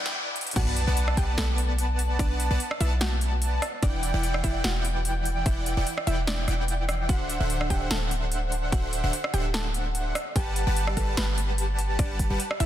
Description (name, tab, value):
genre	future bass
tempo	147 BPM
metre	4/4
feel	swing 54% on 16ths, half-time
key	unclear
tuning	A4 = 440 Hz
part	supersaw stab	riff	0.0-12.7 s	D3 to A5	-32 LUFS	equal	sidechain pumping
part	warm 808-style bass	bass	0.0-12.7 s	D1 to B1	-27 LUFS	equal	sidechain pumping, high-pass filter
part	riser, noise sweep and sub drop	sound effects	0.0-2.2 s	none	-36 LUFS	equal	none
part	big-room dance drum kit	drums	0.1-12.7 s	crash cymbal, hi-hat, rim click, snare drum	-31 LUFS	equal	high-pass filter on snare, high-pass filter on hats, high-pass filter on cymbals, high-pass filter on room
part	mallet-like synth pluck	melody	0.6-12.7 s	D4 to B5	-37 LUFS	equal	chorus, sidechain pumping, digital delay
part	airy dreamy lead	arpeggios	0.6-12.7 s	F#5 to A5	-36 LUFS	equal	chorus, cassette tape, sidechain pumping
part	electronic kick drum	drums	0.6-12.3 s	none	-26 LUFS	equal	none
room	light reverb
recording	dense, heavily limited modern master, high-pass filter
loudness	-24 LUFS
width	side -12 dB against mid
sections	0.6-12.7 A section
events	drum fill 0.0, 0.4; riser 0.0; noise sweep 0.0-0.6; stop 0.2-0.6; drop 0.6-12.7; impact 0.6-2.2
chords	0.0 Em7; 0.6 Bm7; 3.6 Em7; 7.1 D7; 10.2 Gmaj7